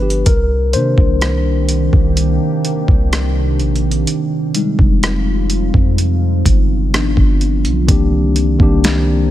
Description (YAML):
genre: contemporary R&B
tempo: 63 BPM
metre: 4/4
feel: straight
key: C minor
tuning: A4 = 440 Hz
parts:
  - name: mellow tine electric piano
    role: accompaniment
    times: 0.0-9.3 s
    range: Eb3 to C5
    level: -19 LUFS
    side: left 3 dB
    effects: slow stereo tremolo
  - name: long sustained 808-style bass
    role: bass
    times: 0.0-9.3 s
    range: F1 to C3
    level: -16 LUFS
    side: equal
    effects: none
  - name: dusty soul sampler-style drum kit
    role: drums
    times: 0.1-9.1 s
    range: hi-hat, kick drum, rim click, snare drum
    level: -14 LUFS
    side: equal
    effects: overdrive
  - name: deep dark ambient pad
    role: sustained chords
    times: 1.1-9.3 s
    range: C3 to Bb5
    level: -20 LUFS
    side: right 2 dB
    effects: chorus, built-in reverb
room: little or no reverb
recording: none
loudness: -12 LUFS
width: side -13 dB against mid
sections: 0.0-7.9 A section; 7.9-9.3 B section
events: tine electric piano solo 0.0-7.9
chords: 0.3 Cm9; 4.1 Fm7; 6.9 G7; 7.9 Cm9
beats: | 0.26 1.22 2.17 3.12 | 4.07 5.03 5.98 6.93 | 7.88 8.84